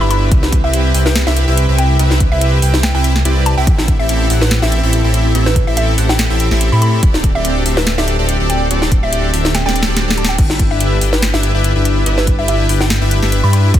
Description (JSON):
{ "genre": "future bass", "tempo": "143 BPM", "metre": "4/4", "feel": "swing 54% on 16ths, half-time", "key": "G major", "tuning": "A4 = 442 Hz", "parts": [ { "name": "hollow square pluck", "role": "melody", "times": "0.0-13.6 s", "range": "B4 to B5", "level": "-22 LUFS", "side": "equal", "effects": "chorus, sidechain pumping, dub echo" }, { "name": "big bright polysynth", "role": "riff", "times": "0.0-13.8 s", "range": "C4 to G5", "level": "-18 LUFS", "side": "left 1 dB", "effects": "chorus, sidechain pumping" }, { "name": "wide detuned saw bass", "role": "bass", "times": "0.0-13.8 s", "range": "D1 to A2", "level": "-14 LUFS", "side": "equal", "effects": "chorus, sidechain pumping" }, { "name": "trap drum kit", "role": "drums", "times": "0.1-13.8 s", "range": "crash cymbal, hi-hat, snare drum", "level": "-18 LUFS", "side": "equal", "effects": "none" }, { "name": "electronic kick drum", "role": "drums", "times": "0.3-13.8 s", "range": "none", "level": "-13 LUFS", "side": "equal", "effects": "none" }, { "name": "swell", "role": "sound effects", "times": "9.8-10.4 s", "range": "none", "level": "-31 LUFS", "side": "right 7 dB", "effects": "none" }, { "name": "concert harp", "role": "arpeggios", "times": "10.5-13.8 s", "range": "E4 to D5", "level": "-28 LUFS", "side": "right 4 dB", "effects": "sidechain pumping, dub echo" } ], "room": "light reverb, digital ambience", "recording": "dense, heavily limited modern master", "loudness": "-11 LUFS", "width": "side -11 dB against mid", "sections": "0.0-13.8 A section", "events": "kick drops out 9.5-10.4; drum fill 9.5-10.4", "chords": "0.3 Cmaj7; 3.7 Am7; 7.0 D7sus4; 10.4 G6", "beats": "| 0.32 0.73 1.15 1.57 | 1.99 2.41 2.83 3.25 | 3.67 4.09 4.51 4.93 | 5.35 5.77 6.19 6.61 | 7.03 7.45 7.87 8.29 | 8.71 9.13 9.55 9.97 | 10.38 10.80 11.22 11.64 | 12.06 12.48 12.90 13.32 | 13.74" }